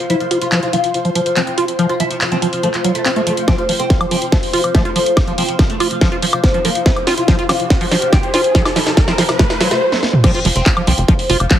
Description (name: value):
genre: psychedelic trance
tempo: 142 BPM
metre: 4/4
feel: straight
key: unclear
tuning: A4 = 439 Hz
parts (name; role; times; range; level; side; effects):
- oud; melody; 0.0-11.6 s; F3 to F4; -20 LUFS; left 2 dB; phaser, sidechain pumping, digital delay
- downlifter and riser; sound effects; 0.0-0.1, 4.9-9.8 s; none; -25 LUFS; left 1 dB; none
- ethereal airy pad; texture; 0.0-9.8 s; F4 to C6; -25 LUFS; equal; ensemble chorus, built-in reverb, sidechain pumping
- liquid acid bass; riff; 0.1-11.6 s; F3 to F4; -20 LUFS; right 1 dB; chorus, auto-pan, sidechain pumping, digital delay
- techno drum kit; drums; 0.1-11.6 s; crash cymbal, handclaps, hi-hat, snare drum, toms, woodblock; -19 LUFS; equal; none
- electronic kick drum; drums; 3.5-11.6 s; none; -14 LUFS; equal; distortion
- tight sequencer bass; bass; 10.4-11.5 s; F1 to C2; -16 LUFS; equal; none
room: light reverb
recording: heavily compressed radio sound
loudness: -12 LUFS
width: side -11 dB against mid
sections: 0.0-3.5 A section; 3.5-10.2 B section; 10.2-11.6 C section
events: filter sweep on acid bass 0.0-3.5, 3.5-10.2; build-up 3.5-10.2; drum fill 3.5-9.8, 9.9-10.2; riser 4.9-9.8; drop 10.2-11.6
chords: 0.0 F5